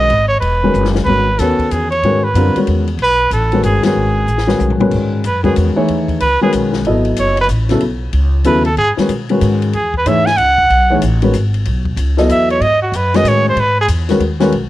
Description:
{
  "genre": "modal jazz",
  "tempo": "187 BPM",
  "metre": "3/4",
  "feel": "swing 64% on 8ths",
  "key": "G# phrygian",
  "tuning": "A4 = 439 Hz",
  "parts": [
    { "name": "clear trumpet", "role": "melody", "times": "0.0-13.9 s", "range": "F#4 to G#5", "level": "-15 LUFS", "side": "right 2 dB", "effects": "none" },
    { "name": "dark baby grand piano", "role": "accompaniment", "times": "0.0-14.5 s", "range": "C#3 to D#5", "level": "-15 LUFS", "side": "left 2 dB", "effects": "none" },
    { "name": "upright bass", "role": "bass", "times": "0.0-14.7 s", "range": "E1 to B2", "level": "-17 LUFS", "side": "equal", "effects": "none" },
    { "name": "compact cocktail drum kit", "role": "drums", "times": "0.1-14.6 s", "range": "crash cymbal, hi-hat, kick drum, ride cymbal, snare drum, toms", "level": "-26 LUFS", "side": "left 5 dB", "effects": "none" }
  ],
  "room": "light reverb",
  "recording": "1960s-style stereo",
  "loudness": "-11 LUFS",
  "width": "side -15 dB against mid",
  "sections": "0.0-4.9 A section; 4.9-14.7 B section",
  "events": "drum fill 0.7-1.1, 4.3-4.9; band accent 3.8; trumpet solo 4.9-14.7",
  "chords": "0.0 G#m7; 1.1 E6/G#; 4.9 G#m7; 8.8 E6; 12.6 G#m7"
}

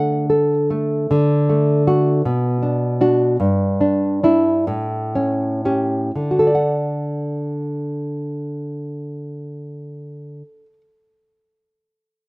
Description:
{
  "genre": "romantic piece for solo classical guitar",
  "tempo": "38-53 BPM (dotted quarters)",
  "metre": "6/8",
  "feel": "rubato",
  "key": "D major",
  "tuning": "A4 = 439 Hz",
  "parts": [
    { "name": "nylon-string guitar", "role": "solo", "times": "0.0-10.8 s", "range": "G2 to F#5", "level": "-17 LUFS", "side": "equal", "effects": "none" }
  ],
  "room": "light reverb",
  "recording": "recorded outdoors, with no room sound",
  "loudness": "-16 LUFS",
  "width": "side -28 dB against mid",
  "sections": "0.0-1.1 A section; 1.1-6.1 B section; 6.1-11.8 C section",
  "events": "slowing down 0.0-6.1",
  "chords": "0.0 D; 2.2 Bm; 3.4 Em7/G; 4.7 A7; 6.1 D"
}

